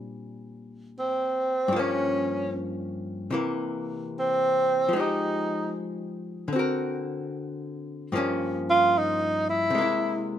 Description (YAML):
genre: jazz ballad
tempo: 75 BPM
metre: 4/4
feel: swing 67% on 8ths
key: unclear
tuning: A4 = 440 Hz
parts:
  - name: archtop guitar, miked and amplified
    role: accompaniment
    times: 0.0-10.4 s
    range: G2 to Bb4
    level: -29 LUFS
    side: left 2 dB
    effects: none
  - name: breathy tenor saxophone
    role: melody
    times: 1.0-10.2 s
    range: C4 to F4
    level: -23 LUFS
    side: right 1 dB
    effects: none
room: moderate echo chamber reverb, RT60 1.4 s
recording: minimal, uncompressed stereo recording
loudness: -24 LUFS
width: side -10 dB against mid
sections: 0.0-10.4 A section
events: tenor saxophone solo 0.0-10.4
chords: 0.0 Bb69; 1.7 Gm7b5; 3.3 C7; 4.9 Fm9; 6.5 D7b13; 8.1 Gm7b5; 9.7 Caug7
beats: 0.10 0.90 | 1.70 2.50 3.31 4.11 | 4.91 5.71 6.51 7.31 | 8.12 8.92 9.72